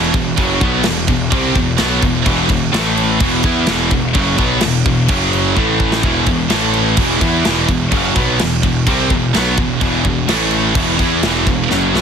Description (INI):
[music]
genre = heavy metal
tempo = 127 BPM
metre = 4/4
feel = straight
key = unclear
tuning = A4 = 440 Hz
[part]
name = heavy high-gain guitar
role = riff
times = 0.0-12.0 s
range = E2 to E4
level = -18 LUFS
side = right 12 dB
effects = distortion
[part]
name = overdriven electric guitar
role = riff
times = 0.0-12.0 s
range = E2 to E4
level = -21 LUFS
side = equal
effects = none
[part]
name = scooped high-gain guitar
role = riff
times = 0.0-12.0 s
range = E2 to E4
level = -20 LUFS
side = left 12 dB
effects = distortion
[part]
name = fuzz picked electric bass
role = bass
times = 0.0-12.0 s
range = E1 to E2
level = -20 LUFS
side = equal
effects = overdrive
[part]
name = tight metal drum kit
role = drums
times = 0.1-12.0 s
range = crash cymbal, kick drum, snare drum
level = -18 LUFS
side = equal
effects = none
[sound]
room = little or no reverb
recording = dense, heavily limited modern master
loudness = -12 LUFS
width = side -7 dB against mid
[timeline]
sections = 0.0-12.0 A section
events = drum fill 5.6-6.0, 11.7-12.0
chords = 0.0 Em; 2.7 A5; 3.2 E5; 5.1 F#5; 5.6 A5; 6.0 E5; 6.5 A5; 7.0 Em; 10.3 A5; 10.8 E5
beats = | 0.38 0.85 1.33 1.80 | 2.27 2.74 3.22 3.69 | 4.16 4.63 5.11 5.58 | 6.05 6.52 6.99 7.47 | 7.94 8.41 8.88 9.35 | 9.82 10.29 10.77 11.24 | 11.71